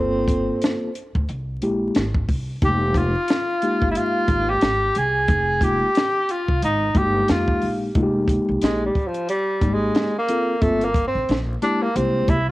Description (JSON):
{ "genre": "hip hop, jazz-hop", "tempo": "90 BPM", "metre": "4/4", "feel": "swing 58% on 16ths", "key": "F minor", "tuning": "A4 = 439 Hz", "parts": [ { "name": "breathy tenor saxophone", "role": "melody", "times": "0.0-12.5 s", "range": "F3 to Ab4", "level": "-21 LUFS", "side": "equal", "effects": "cassette tape" }, { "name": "vibraphone with soft mallets", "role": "second line", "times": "0.0-7.8 s", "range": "C5 to Ab5", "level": "-32 LUFS", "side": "right 1 dB", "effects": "cassette tape" }, { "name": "mellow tine electric piano", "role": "accompaniment", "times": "0.0-12.4 s", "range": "G3 to A4", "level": "-23 LUFS", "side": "left 1 dB", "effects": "medium stereo tremolo, cassette tape" }, { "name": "upright bass", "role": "bass", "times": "0.0-12.5 s", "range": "F1 to F2", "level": "-26 LUFS", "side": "equal", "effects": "none" }, { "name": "compact cocktail drum kit", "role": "drums", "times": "0.3-12.5 s", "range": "hi-hat, kick drum, snare drum", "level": "-22 LUFS", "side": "equal", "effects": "cassette tape" } ], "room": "light reverb, small room ambience", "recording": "home recording on cassette, vinyl crackle, faint mains hum", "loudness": "-18 LUFS", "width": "side -18 dB against mid", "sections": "0.0-8.0 A section; 8.0-12.5 B section", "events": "tenor saxophone solo 8.0-12.5", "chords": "0.0 Gm11; 1.3 C7b13; 2.6 Fm11; 10.6 Gm11; 12.0 C7b13" }